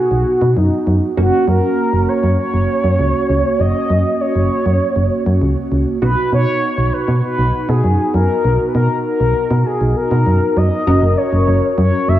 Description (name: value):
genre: synth-pop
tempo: 99 BPM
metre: 4/4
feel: straight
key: F# major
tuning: A4 = 440 Hz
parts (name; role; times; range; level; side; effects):
- mellow horn-like synth lead; melody; 0.0-12.2 s; D#4 to E5; -18 LUFS; left 1 dB; chorus, dub echo
- funky polysynth comp; accompaniment; 0.0-12.2 s; A#3 to A#4; -20 LUFS; right 1 dB; chorus
- solid FM bass; bass; 0.1-12.2 s; F#1 to B2; -14 LUFS; equal; none
room: moderate spring reverb, RT60 2.6 s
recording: echo-heavy mix, small room ambience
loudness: -13 LUFS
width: side -12 dB against mid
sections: 0.0-10.9 A section; 10.9-12.2 B section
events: none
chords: 0.0 B; 1.2 F#; 6.0 Bmaj7; 10.9 F#